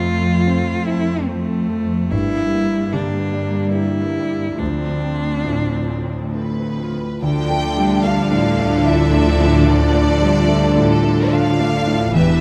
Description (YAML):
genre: cinematic, emotional film score for orchestra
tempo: 67-75 BPM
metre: 3/4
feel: rubato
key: D minor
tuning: A4 = 442 Hz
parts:
  - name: rich cello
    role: melody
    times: 0.0-6.3 s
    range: A3 to F4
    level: -25 LUFS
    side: equal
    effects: none
  - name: rich studio viola section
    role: accompaniment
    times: 0.0-12.4 s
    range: E3 to D4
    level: -28 LUFS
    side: equal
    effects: none
  - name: warm concert grand piano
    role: accompaniment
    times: 0.0-12.4 s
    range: D2 to F4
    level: -23 LUFS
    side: equal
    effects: none
  - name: concert harp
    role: arpeggios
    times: 0.0-12.4 s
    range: G2 to A5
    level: -29 LUFS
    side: equal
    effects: none
  - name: rich studio cello section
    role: bass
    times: 0.0-12.4 s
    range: D2 to D3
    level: -24 LUFS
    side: equal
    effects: none
  - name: clear studio double bass section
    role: bass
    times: 2.1-12.4 s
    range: E1 to D2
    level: -24 LUFS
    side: equal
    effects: none
  - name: rich studio violin section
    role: melody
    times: 6.3-12.4 s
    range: A4 to G5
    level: -26 LUFS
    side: equal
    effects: none
  - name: rich studio violin section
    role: second line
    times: 7.2-12.4 s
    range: G4 to D5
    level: -27 LUFS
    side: equal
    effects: none
room: moderate recital hall reverb, RT60 1.7 s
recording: close, detailed microphones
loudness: -18 LUFS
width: mono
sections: 0.0-7.2 A section; 7.2-12.4 A section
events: none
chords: 0.0 F; 2.1 Gm; 4.6 Dm7; 7.2 Dmadd9